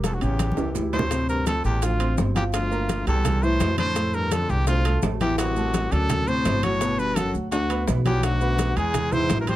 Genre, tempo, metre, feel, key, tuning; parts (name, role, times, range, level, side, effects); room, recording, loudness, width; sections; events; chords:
Afro-Cuban jazz; 168 BPM; 4/4; straight; A4 = 440 Hz
clear trumpet; melody; 0.0-9.6 s; F4 to C#5; -27 LUFS; equal
warm grand piano; accompaniment; 0.0-9.6 s; A2 to C6; -28 LUFS; equal
upright bass; bass; 0.0-9.6 s; E1 to F2; -25 LUFS; equal
bongos; percussion; 0.0-9.6 s; -34 LUFS; left 7 dB
congas; percussion; 0.0-9.6 s; -30 LUFS; equal
maracas; percussion; 0.0-9.6 s; -40 LUFS; right 8 dB
timbales; percussion; 0.0-9.6 s; -33 LUFS; right 5 dB
bright baritone saxophone; second line; 0.1-9.6 s; C2 to A2; -30 LUFS; left 4 dB
light reverb; close, detailed microphones; -20 LUFS; side -14 dB against mid
0.0-1.1 A section; 1.1-9.6 B section
drum fill 0.4-1.1
0.4 A7; 1.1 Dm7; 2.5 Gm7; 3.2 C69; 4.0 F6; 5.4 Am; 6.1 D7; 6.8 Gmaj7; 8.2 Bm; 8.9 Eaug